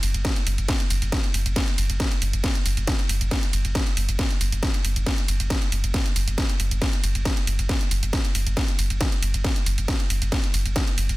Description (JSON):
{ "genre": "driving peak-time techno", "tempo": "137 BPM", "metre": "4/4", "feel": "straight", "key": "unclear", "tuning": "A4 = 440 Hz", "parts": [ { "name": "saturated sub bass", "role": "bass", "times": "0.0-11.2 s", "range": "F#1", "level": "-25 LUFS", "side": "equal", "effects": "tube saturation, sidechain pumping, low-pass filter" }, { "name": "techno drum kit", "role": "drums", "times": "0.0-11.2 s", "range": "hi-hat, ride cymbal, snare drum", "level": "-27 LUFS", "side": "equal", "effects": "overdrive, sidechain pumping on hats, sidechain pumping on cymbals" }, { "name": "electronic kick drum", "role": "drums", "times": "0.2-10.9 s", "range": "none", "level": "-25 LUFS", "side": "equal", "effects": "distortion, overdrive" } ], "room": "little or no reverb", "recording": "dense, heavily limited modern master", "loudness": "-21 LUFS", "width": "side -19 dB against mid", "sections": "0.0-11.2 A section", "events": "none", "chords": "none", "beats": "0.25 | 0.69 1.12 1.56 2.00 | 2.44 2.88 3.31 3.75 | 4.19 4.63 5.07 5.50 | 5.94 6.38 6.82 7.25 | 7.69 8.13 8.57 9.01 | 9.44 9.88 10.32 10.76" }